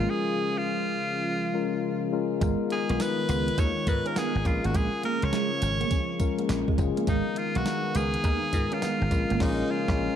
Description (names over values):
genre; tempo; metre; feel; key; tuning
R&B, new jack swing; 103 BPM; 4/4; swing 65% on 16ths; unclear; A4 = 436 Hz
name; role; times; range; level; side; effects
edgy tenor saxophone; melody; 0.0-10.2 s; D#4 to C#5; -30 LUFS; equal; none
mellow tine electric piano; accompaniment; 0.0-10.2 s; G#3 to E#5; -30 LUFS; moving between left 10 dB and left 3 dB; auto-pan
lush unison pad; sustained chords; 0.0-10.2 s; C#3 to E#5; -34 LUFS; right 1 dB; chorus
electric guitar at the edge of break-up; riff; 0.0-9.4 s; G#3 to D#4; -34 LUFS; right 9 dB; analog chorus
dry thumbed slap bass; bass; 0.0-10.1 s; F#1 to G#2; -29 LUFS; equal; none
crisp 8-bit digital drum machine; drums; 2.4-10.0 s; crash cymbal, hi-hat, kick drum, snare drum, tambourine; -30 LUFS; equal; none
room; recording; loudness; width
light reverb, digital ambience; dark, warm production; -24 LUFS; side -9 dB against mid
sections
0.0-10.2 A section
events
break 0.1-2.4; band accent 9.4-10.2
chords
0.0 A#m7; 2.4 G#m69; 4.5 A#m7; 7.1 G#m69; 9.1 A#m7